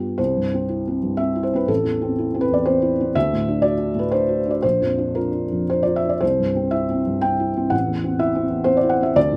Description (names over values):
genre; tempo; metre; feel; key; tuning
neoclassical minimalist piano; 99-127 BPM; 3/4; rubato; C lydian; A4 = 441 Hz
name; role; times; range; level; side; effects
felt-muted upright piano; solo; 0.0-9.4 s; A1 to G5; -21 LUFS; equal; none
room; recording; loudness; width
light reverb; none; -21 LUFS; mono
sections
0.2-9.4 A section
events
none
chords
0.2 C; 1.7 Am; 3.1 Dadd9; 4.6 Bb; 6.2 C; 7.7 Am